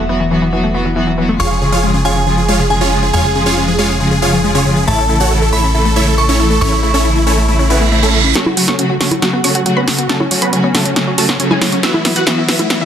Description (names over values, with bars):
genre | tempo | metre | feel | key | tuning
uplifting trance | 138 BPM | 4/4 | straight | F# minor | A4 = 440 Hz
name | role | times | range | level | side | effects
glassy synth bell | second line | 0.0-8.3 s | E5 to C#6 | -21 LUFS | right 1 dB | chorus, dub echo
rich symphonic string section | sustained chords | 0.0-12.8 s | C#3 to F#4 | -18 LUFS | equal | low-pass filter
wide unison pluck | arpeggios | 0.0-12.8 s | C#3 to E4 | -19 LUFS | left 3 dB | dub echo
plucky analog bass | bass | 0.0-8.3 s | E1 to A1 | -17 LUFS | equal | none
supersaw chords | melody | 1.4-12.8 s | G#3 to F#5 | -16 LUFS | right 1 dB | phaser, low-pass filter, dub echo
reverse cymbal and riser | sound effects | 7.7-12.8 s | none | -22 LUFS | right 6 dB | none
analog pluck | second line | 8.4-12.8 s | C#5 to F#6 | -23 LUFS | equal | chorus, dub echo
punchy analog drum machine | drums | 8.4-12.8 s | congas, hi-hat, snare drum | -15 LUFS | right 1 dB | low-pass filter on snare, low-pass filter on hats, low-pass filter on perc
room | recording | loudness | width
light reverb, digital ambience | dense, heavily limited modern master, high-pass filter | -11 LUFS | side -9 dB against mid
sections
0.0-8.4 A section; 8.4-12.8 B section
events
filter sweep on synth arpeggio sound 0.0-8.4, 8.4-12.8; reverse cymbal 7.7-8.4; build-up 8.4-12.8; drum fill 8.4-12.8; filter sweep on supersaw synth 8.4-12.8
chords
0.0 Esus2; 1.4 C#/E#; 4.9 A; 8.4 F#m; 11.8 Esus2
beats
0.09 0.53 0.96 | 1.40 1.83 2.27 2.70 | 3.14 3.57 4.01 4.44 | 4.88 5.31 5.75 6.18 | 6.62 7.05 7.48 7.92 | 8.35 8.79 9.22 9.66 | 10.09 10.53 10.96 11.40 | 11.83 12.27 12.70